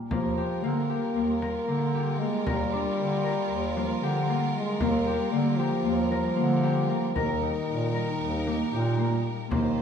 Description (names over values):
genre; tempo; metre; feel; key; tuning
contemporary instrumental, chamber music in an uneven meter; 230 BPM (eighths); 9/8; straight; unclear; A4 = 440 Hz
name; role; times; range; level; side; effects
Celtic harp; arpeggios; 0.0-9.8 s; Bb3 to Bb4; -29 LUFS; left 1 dB; none
mellow French horn; second line; 0.1-9.8 s; Eb3 to Bb3; -30 LUFS; left 1 dB; none
warm studio string section; sustained chords; 0.1-9.8 s; G3 to C5; -35 LUFS; right 2 dB; none
mellow bass clarinet; bass; 0.1-9.8 s; Eb2 to D3; -30 LUFS; equal; none
frame drum; percussion; 0.1-9.8 s; none; -34 LUFS; right 1 dB; none
room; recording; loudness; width
wet scoring stage reverb, RT60 1.5 s; dark, warm production; -24 LUFS; side -7 dB against mid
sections
0.0-9.5 A section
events
none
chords
0.1 Gm7/Eb; 7.2 Eb